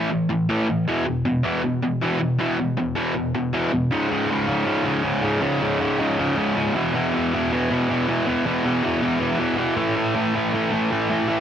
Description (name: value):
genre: punk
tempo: 158 BPM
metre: 4/4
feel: straight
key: C# minor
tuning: A4 = 444 Hz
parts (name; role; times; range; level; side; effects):
- distorted electric guitar; solo; 0.0-11.4 s; C#2 to A3; -20 LUFS; equal; distortion
room: light reverb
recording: heavily compressed radio sound, multiband compression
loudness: -20 LUFS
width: side -9 dB against mid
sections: 0.0-3.9 A section; 3.9-11.4 B section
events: none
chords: 0.0 A5; 0.9 E5; 3.9 C#5; 6.7 E5; 9.8 A5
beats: 0.10 0.48 | 0.86 1.25 1.62 2.00 | 2.38 2.77 3.15 3.52 | 3.90 4.28 4.66 5.04 | 5.42 5.80 6.18 6.56 | 6.94 7.32 7.70 8.08 | 8.46 8.84 9.21 9.59 | 9.97 10.35 10.73 11.11